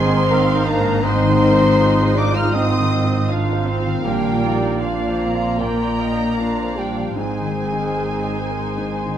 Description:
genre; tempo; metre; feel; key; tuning
cinematic; 74-82 BPM; 4/4; rubato; Ab lydian; A4 = 437 Hz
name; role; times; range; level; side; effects
clear French horn; melody; 0.0-9.2 s; F4 to Eb5; -25 LUFS; equal; none
muted studio violin section; melody; 0.0-9.2 s; Eb5 to Bb5; -32 LUFS; left 1 dB; none
hollow concert flute; second line; 0.0-9.2 s; F5 to F6; -27 LUFS; right 1 dB; none
muted studio violin section; second line; 0.0-9.2 s; F5 to F6; -30 LUFS; right 1 dB; none
clear baby grand piano; accompaniment; 0.0-9.2 s; Ab2 to C5; -26 LUFS; left 2 dB; none
muted studio viola section; accompaniment; 0.0-9.2 s; Eb3 to F5; -26 LUFS; right 4 dB; none
mellow French horn section; sustained chords; 0.0-9.2 s; F3 to F4; -24 LUFS; left 3 dB; none
concert harp; arpeggios; 0.0-9.2 s; Ab2 to C6; -28 LUFS; left 8 dB; none
muted studio cello section; bass; 0.0-9.2 s; Ab2 to Bb2; -24 LUFS; right 3 dB; none
muted studio double bass section; bass; 0.0-9.2 s; Ab1 to Bb1; -26 LUFS; right 4 dB; none
clear clarinet; second line; 0.3-9.2 s; Bb3 to Eb4; -27 LUFS; equal; none
room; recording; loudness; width
moderate scoring stage reverb, RT60 1.8 s; none; -16 LUFS; side -10 dB against mid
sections
0.0-9.2 A section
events
none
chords
0.0 Abadd9; 4.0 Bbadd9; 7.2 Abadd9

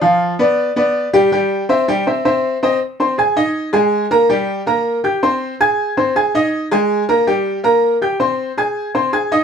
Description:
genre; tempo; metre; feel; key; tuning
latin; 161 BPM; 4/4; straight; unclear; A4 = 440 Hz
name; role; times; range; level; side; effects
bright upright piano; solo; 0.0-9.4 s; F3 to Ab6; -14 LUFS; equal; none
room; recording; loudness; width
moderate studio reverb, RT60 0.5 s; band playing live in one room; -14 LUFS; side -7 dB against mid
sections
0.0-2.8 A section; 2.8-9.4 B section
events
none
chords
0.0 G7; 1.3 C; 2.8 Abadd9; 4.3 C5; 5.8 Abadd9; 7.3 C5; 8.8 Ab

